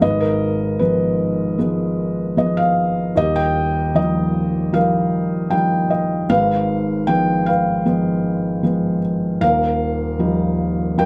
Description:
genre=acoustic folk-pop ballad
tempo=77 BPM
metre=4/4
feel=straight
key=unclear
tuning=A4 = 441 Hz
part: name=felt-muted upright piano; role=solo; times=0.0-11.1 s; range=Eb1 to G5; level=-19 LUFS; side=equal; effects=slapback echo
room=light reverb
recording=close, detailed microphones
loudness=-19 LUFS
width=mono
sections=0.0-11.1 A section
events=none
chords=0.0 Abm6; 3.2 Ebadd9; 6.3 Abm6; 9.4 Ebadd9

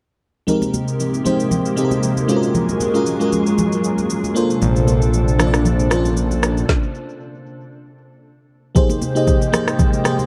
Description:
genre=amapiano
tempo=116 BPM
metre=4/4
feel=swing 55% on 16ths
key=Ab major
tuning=A4 = 440 Hz
part: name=FM electric piano with soft pad layer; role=accompaniment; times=0.5-10.3 s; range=Ab3 to Eb5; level=-22 LUFS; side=equal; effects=chorus, analog delay
part: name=glassy FM pad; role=sustained chords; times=0.6-10.3 s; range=C3 to G5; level=-24 LUFS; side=equal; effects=ensemble chorus, built-in reverb
part: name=afro-pop drum kit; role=drums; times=0.5-10.3 s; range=kick drum, rim click, shaker, snare drum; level=-23 LUFS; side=equal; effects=vintage 12-bit sampler grit
part: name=congas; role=percussion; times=0.5-10.3 s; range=none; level=-27 LUFS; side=equal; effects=analog delay
part: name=fat analog bass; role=bass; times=4.6-6.6 s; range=Bb1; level=-20 LUFS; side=equal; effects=none
room=light reverb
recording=echo-heavy mix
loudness=-18 LUFS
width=mono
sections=0.5-8.8 A section; 8.8-10.3 B section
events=stop 6.7-8.8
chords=0.5 Abmaj9; 2.3 Gbmaj9; 4.4 Bbmaj9; 6.7 N.C.; 8.8 Abmaj9

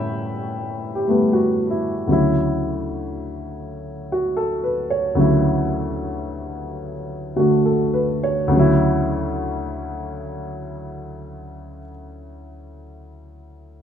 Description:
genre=solo jazz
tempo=67-79 BPM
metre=4/4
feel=swing 68% on 8ths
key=D major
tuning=A4 = 440 Hz
part: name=warm upright piano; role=solo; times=0.0-13.8 s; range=D2 to B5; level=-20 LUFS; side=equal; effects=none
room=moderate large studio reverb, RT60 1.4 s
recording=none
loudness=-18 LUFS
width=side -8 dB against mid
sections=0.0-8.5 A section; 8.5-12.1 B section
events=slowing down 2.1-8.5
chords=0.0 A9; 2.1 Dmaj9

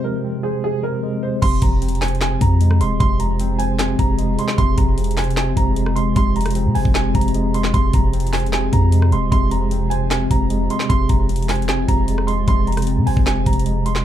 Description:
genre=hip hop, trap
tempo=152 BPM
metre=4/4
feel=half-time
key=F minor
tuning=A4 = 439 Hz
part: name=dark grand piano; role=melody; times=0.0-14.0 s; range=Ab4 to C6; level=-25 LUFS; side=right 4 dB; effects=none
part: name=tine electric piano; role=accompaniment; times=0.0-14.0 s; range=C3 to C5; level=-22 LUFS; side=left 1 dB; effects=fast stereo tremolo
part: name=glassy FM pad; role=sustained chords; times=1.8-14.0 s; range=C3 to Ab4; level=-28 LUFS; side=left 1 dB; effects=ensemble chorus, built-in reverb
part: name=warm 808-style bass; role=bass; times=1.4-14.0 s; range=Eb1 to C3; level=-19 LUFS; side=equal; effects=none
part: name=trap drum kit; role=drums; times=1.4-14.0 s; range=crash cymbal, handclaps, hi-hat, kick drum, rim click, snare drum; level=-20 LUFS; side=equal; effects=none
room=light reverb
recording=dark, warm production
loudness=-15 LUFS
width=side -11 dB against mid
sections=0.0-1.4 A section; 1.4-14.0 B section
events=break 0.0-1.4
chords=0.0 Fm

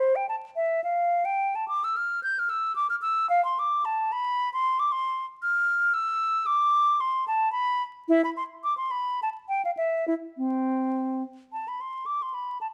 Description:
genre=classical, baroque-style fantasia for unaccompanied flute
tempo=101-116 BPM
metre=3/4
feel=rubato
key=C major from 4.9 s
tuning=A4 = 441 Hz
part: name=concert flute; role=solo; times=0.0-12.7 s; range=C4 to G6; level=-26 LUFS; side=equal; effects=none
room=moderate stone room reverb, RT60 1.1 s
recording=dark, warm production, vinyl crackle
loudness=-27 LUFS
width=mono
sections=0.0-11.5 A section; 11.5-12.7 A section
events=none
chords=none

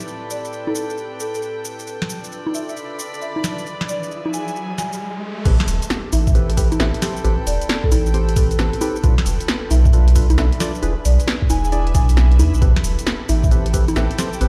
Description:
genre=UK garage, two-step garage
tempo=134 BPM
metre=4/4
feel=swing 65% on 16ths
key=A minor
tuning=A4 = 440 Hz
part: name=airy breathy pad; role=sustained chords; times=0.0-14.5 s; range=A2 to C5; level=-36 LUFS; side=equal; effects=chorus, sidechain pumping
part: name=punchy analog drum machine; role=drums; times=0.0-14.5 s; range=congas, crash cymbal, hi-hat, shaker, snare drum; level=-26 LUFS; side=equal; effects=none
part: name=warm chamber string section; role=texture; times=0.0-14.5 s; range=A4 to B5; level=-35 LUFS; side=equal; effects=sidechain pumping
part: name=marimba with soft mallets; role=melody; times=0.3-14.1 s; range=A4 to G#5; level=-32 LUFS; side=equal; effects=dub echo
part: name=riser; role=sound effects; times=3.3-5.5 s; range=none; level=-34 LUFS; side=equal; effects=none
part: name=percussive organ stab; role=stabs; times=5.5-14.5 s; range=C4 to D5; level=-30 LUFS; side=equal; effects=chorus, dub echo
part: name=saturated sub bass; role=bass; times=5.5-14.5 s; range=E1 to E2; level=-18 LUFS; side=equal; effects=none
part: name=electronic kick drum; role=drums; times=5.5-13.9 s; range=none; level=-19 LUFS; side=equal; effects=none
room=digital ambience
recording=played on a big sound system in a bare room, large studio reverb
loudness=-19 LUFS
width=mono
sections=0.0-5.5 A section; 5.5-14.5 B section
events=riser 3.3-5.5; drop 5.5-14.5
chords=0.0 Am9; 1.9 Bm7b5; 3.7 E7; 5.5 Am9; 9.0 Bm7b5; 10.8 E7; 12.6 Am9

